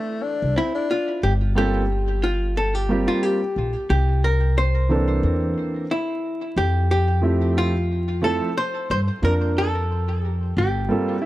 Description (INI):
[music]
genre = hip hop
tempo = 90 BPM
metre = 4/4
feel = swing 57% on 16ths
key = G dorian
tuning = A4 = 440 Hz
[part]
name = breathy tenor saxophone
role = second line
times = 0.0-1.2 s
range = A3 to D4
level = -26 LUFS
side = left 4 dB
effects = none
[part]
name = upright bass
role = bass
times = 0.4-10.9 s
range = G1 to G2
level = -21 LUFS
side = equal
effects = none
[part]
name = archtop guitar, miked and amplified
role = melody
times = 0.6-11.3 s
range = E4 to C5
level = -24 LUFS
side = left 1 dB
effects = tape echo
[part]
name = warm concert grand piano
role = accompaniment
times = 1.6-11.3 s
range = E3 to Bb4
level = -24 LUFS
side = right 2 dB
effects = none
[sound]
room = studio ambience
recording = vinyl crackle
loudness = -19 LUFS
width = side -16 dB against mid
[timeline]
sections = 0.0-1.2 A section; 1.2-11.3 B section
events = none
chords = 0.0 D7sus2; 1.2 Gm11; 3.9 C13; 6.6 Fmaj9; 9.2 Bbmaj7/F; 10.6 Gm11